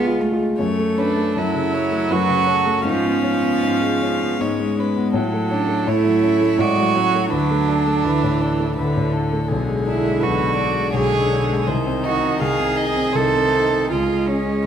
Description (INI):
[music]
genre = classical, slow romantic movement for piano quartet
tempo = 82 BPM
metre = 3/4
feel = rubato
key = F# minor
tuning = A4 = 440 Hz
[part]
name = warm cello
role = second line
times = 0.0-14.7 s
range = A3 to A4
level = -20 LUFS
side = right 5 dB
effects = none
[part]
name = warm concert grand piano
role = accompaniment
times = 0.0-14.7 s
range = B1 to G#4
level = -21 LUFS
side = left 2 dB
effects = none
[part]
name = warm viola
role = accompaniment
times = 0.0-14.7 s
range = D3 to E#4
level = -25 LUFS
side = right 2 dB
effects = none
[part]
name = rich violin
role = melody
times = 0.6-14.6 s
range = G#4 to E#5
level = -28 LUFS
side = left 4 dB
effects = none
[sound]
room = wet stone room reverb, RT60 1.3 s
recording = none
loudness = -17 LUFS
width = side -8 dB against mid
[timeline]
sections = 0.6-14.7 A section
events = none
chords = 0.0 C#; 0.6 F#m; 2.9 C#7/G#; 5.1 F#m/A; 7.3 D; 9.5 G#dim/B; 11.7 Cm6; 13.9 C#